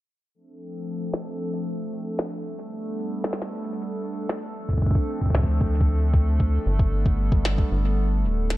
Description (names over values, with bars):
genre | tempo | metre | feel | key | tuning
IDM | 114 BPM | 4/4 | straight | D dorian | A4 = 440 Hz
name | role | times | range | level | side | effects
hollow soft pad | sustained chords | 0.3-8.6 s | F3 to A4 | -30 LUFS | right 1 dB | chorus
glitchy drum kit | drums | 1.1-8.6 s | hi-hat, snare drum | -30 LUFS | equal | low-pass filter on snare, low-pass filter on hats, dub echo
electronic kick drum | drums | 4.7-7.7 s | none | -22 LUFS | equal | none
rubbery square bass | bass | 5.3-8.6 s | D1 to D2 | -22 LUFS | equal | none
room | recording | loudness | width
digital ambience | low-pass filter | -22 LUFS | side -16 dB against mid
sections
0.3-8.6 A section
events
filter sweep on drum 0.3-8.6; filter sweep 0.3-8.6; kick drops out 7.7-8.6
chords
0.3 Dm7; 2.5 Gadd9; 4.6 Dm7; 6.7 Gadd9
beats
| 0.35 0.87 1.40 1.93 | 2.45 2.98 3.50 4.03 | 4.56 5.08 5.61 6.14 | 6.66 7.19 7.71 8.24